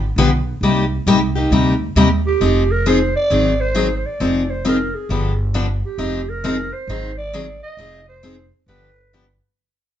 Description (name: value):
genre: acoustic string swing (jazz manouche)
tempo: 134 BPM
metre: 4/4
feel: swing 64% on 8ths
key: unclear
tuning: A4 = 440 Hz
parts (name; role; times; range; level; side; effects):
- upright bass; bass; 0.0-9.4 s; F1 to Eb2; -21 LUFS; right 1 dB; none
- picked steel-string acoustic guitar; accompaniment; 0.2-9.2 s; C3 to Ab4; -17 LUFS; left 2 dB; none
- growling clarinet; melody; 2.3-9.4 s; G4 to Eb5; -22 LUFS; right 4 dB; none
room: wet club reverb, RT60 0.7 s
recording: heard from further back in the room, nothing above 7.9 kHz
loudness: -15 LUFS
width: side -10 dB against mid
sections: 0.0-2.4 A section; 2.4-9.6 B section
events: fade-out 2.4-9.6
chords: 0.0 G7; 0.6 Cm7; 2.4 Fm7; 3.3 Ab7; 4.2 Fm7; 5.1 G7; 6.0 Fm7; 6.9 Ab7; 7.8 Fm7; 8.7 G7